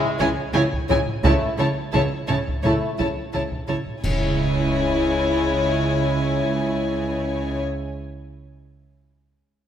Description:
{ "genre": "cinematic, suspense film score", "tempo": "86 BPM", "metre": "4/4", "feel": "straight", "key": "C# minor", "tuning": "A4 = 440 Hz", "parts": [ { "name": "warm French horn section", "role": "sustained chords", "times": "0.0-7.6 s", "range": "G#3 to E4", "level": "-29 LUFS", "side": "left 3 dB", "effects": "none" }, { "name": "celesta", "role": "texture", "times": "0.0-4.1 s", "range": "C#6 to G#6", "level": "-46 LUFS", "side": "left 3 dB", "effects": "none" }, { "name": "warm chamber violin section", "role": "melody", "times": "0.2-7.6 s", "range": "G#5 to A5", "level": "-30 LUFS", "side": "left 2 dB", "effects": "none" }, { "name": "warm chamber violin section", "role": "second line", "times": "0.2-7.6 s", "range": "C#5", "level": "-27 LUFS", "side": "left 4 dB", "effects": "none" }, { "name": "warm chamber viola section", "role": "accompaniment", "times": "0.2-7.6 s", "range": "E4", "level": "-27 LUFS", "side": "right 1 dB", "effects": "none" }, { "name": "rich studio double bass section", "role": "bass", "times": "0.2-7.6 s", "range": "C#2", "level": "-27 LUFS", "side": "right 3 dB", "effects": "none" }, { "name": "warm chamber cello section", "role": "bass", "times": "0.2-7.6 s", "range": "C#3", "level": "-27 LUFS", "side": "right 2 dB", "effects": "none" }, { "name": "taiko ensemble", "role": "drums", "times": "0.2-4.2 s", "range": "none", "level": "-27 LUFS", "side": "equal", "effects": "none" }, { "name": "clash cymbals and concert bass drum", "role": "percussion", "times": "4.0-5.4 s", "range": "none", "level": "-29 LUFS", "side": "equal", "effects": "none" } ], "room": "wet scoring stage reverb, RT60 1.9 s", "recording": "none", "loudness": "-20 LUFS", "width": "side -9 dB against mid", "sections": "0.0-4.0 A section; 4.0-6.8 B section", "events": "band accent 4.0-4.7", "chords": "0.0 C#m; 1.2 A/C#; 4.0 C#m" }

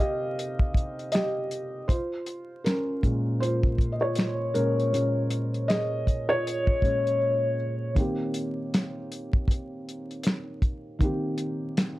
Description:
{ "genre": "lo-fi hip hop", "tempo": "79 BPM", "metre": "4/4", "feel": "swing 61% on 16ths", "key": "C phrygian", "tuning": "A4 = 440 Hz", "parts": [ { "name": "felt-muted upright piano", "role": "accompaniment", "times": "0.0-12.0 s", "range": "Bb2 to F5", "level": "-27 LUFS", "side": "equal", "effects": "cassette tape" }, { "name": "warm soul drum kit", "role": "drums", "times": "0.0-12.0 s", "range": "finger snaps, hi-hat, kick drum, snare drum", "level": "-25 LUFS", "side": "equal", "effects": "none" } ], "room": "moderate small room reverb, RT60 0.5 s", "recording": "vinyl crackle", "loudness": "-24 LUFS", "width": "side -17 dB against mid", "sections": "0.0-8.0 A section; 8.0-12.0 B section", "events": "felt piano solo 0.0-8.0; drums muted 7.2-8.0", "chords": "0.0 Cm7; 1.9 Bbm7; 8.0 Cm7" }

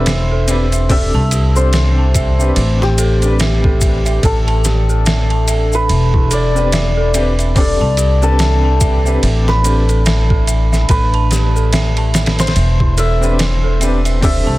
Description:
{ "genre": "trip hop", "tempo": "72 BPM", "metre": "4/4", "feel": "swing 59% on 16ths", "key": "A minor", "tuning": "A4 = 440 Hz", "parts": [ { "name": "santur", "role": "melody", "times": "0.0-14.6 s", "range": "G4 to E5", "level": "-20 LUFS", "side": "left 1 dB", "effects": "tape echo" }, { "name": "clear upright piano", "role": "accompaniment", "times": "0.0-14.5 s", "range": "C4 to C5", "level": "-22 LUFS", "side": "equal", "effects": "tremolo, tape echo" }, { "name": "dark detuned synth bell", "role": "arpeggios", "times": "0.0-14.6 s", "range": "E4 to A5", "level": "-24 LUFS", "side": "right 4 dB", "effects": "chorus, tape echo" }, { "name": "upright bass", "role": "bass", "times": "0.0-14.6 s", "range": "E1 to C2", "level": "-14 LUFS", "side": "equal", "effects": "none" }, { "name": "bowed-like drone", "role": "texture", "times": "0.2-14.6 s", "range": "D4", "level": "-30 LUFS", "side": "right 2 dB", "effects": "built-in reverb" }, { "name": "trip hop sampler-style drum kit", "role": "drums", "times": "0.1-14.5 s", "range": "hi-hat, kick drum, ride cymbal, snare drum", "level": "-18 LUFS", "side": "equal", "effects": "none" }, { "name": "maracas", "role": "percussion", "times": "0.1-14.4 s", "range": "none", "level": "-25 LUFS", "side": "left 3 dB", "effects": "none" } ], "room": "little or no reverb", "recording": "dense, heavily limited modern master", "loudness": "-11 LUFS", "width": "side -18 dB against mid", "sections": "0.0-14.6 A section", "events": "none", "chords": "0.0 Am11" }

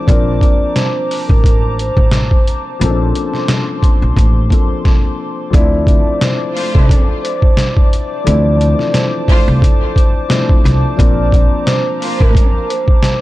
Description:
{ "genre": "hip hop, boom-bap hip-hop", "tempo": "88 BPM", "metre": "4/4", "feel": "swing 55% on 16ths", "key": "D minor", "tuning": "A4 = 439 Hz", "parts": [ { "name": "dark grand piano", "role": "accompaniment", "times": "0.0-13.2 s", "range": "E3 to Bb4", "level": "-21 LUFS", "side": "left 5 dB", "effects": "high-pass filter, low-pass filter" }, { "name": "dark analog pad", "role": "sustained chords", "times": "0.0-13.2 s", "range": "C5 to D6", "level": "-24 LUFS", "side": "equal", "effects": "chorus, tremolo, high-pass filter, low-pass filter" }, { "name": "vibraphone with soft mallets", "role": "melody", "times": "0.1-13.2 s", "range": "A4 to D5", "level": "-20 LUFS", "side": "right 1 dB", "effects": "high-pass filter, low-pass filter, ping-pong delay" }, { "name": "upright bass", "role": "bass", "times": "0.1-12.3 s", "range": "A1 to D2", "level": "-15 LUFS", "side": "equal", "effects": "none" }, { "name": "trip hop sampler-style drum kit", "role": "drums", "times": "0.1-13.2 s", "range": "hi-hat, kick drum, snare drum", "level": "-12 LUFS", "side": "equal", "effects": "none" }, { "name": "warm symphonic string section", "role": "stabs", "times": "6.5-12.5 s", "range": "A3 to C5", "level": "-24 LUFS", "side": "right 1 dB", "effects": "high-pass filter, low-pass filter, ping-pong delay" } ], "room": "small room ambience", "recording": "dark, warm production", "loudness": "-10 LUFS", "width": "side -17 dB against mid", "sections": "0.0-5.5 A section; 5.5-13.2 B section", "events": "stop 4.9-5.5", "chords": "0.1 Bbmaj9; 5.5 Dm7; 11.0 Bbmaj9" }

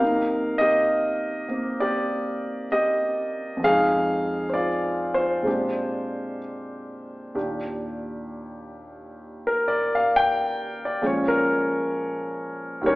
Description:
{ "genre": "solo jazz", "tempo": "66 BPM", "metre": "4/4", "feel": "swing 66% on 8ths, rubato", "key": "unclear", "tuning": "A4 = 440 Hz", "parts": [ { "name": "warm concert grand piano", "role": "solo", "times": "0.0-13.0 s", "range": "Eb2 to G5", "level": "-22 LUFS", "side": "equal", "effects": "none" } ], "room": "wet recital hall reverb, RT60 1.4 s", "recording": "recorded in a church or concert hall, AM radio sound", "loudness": "-22 LUFS", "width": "side -20 dB against mid", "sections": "0.0-7.4 A section; 7.4-13.0 B section", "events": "grand piano solo 7.4-13.0", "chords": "0.0 Cm9; 3.6 Fm7; 5.5 Bb13; 7.4 Ebmaj7; 11.0 Bbm7" }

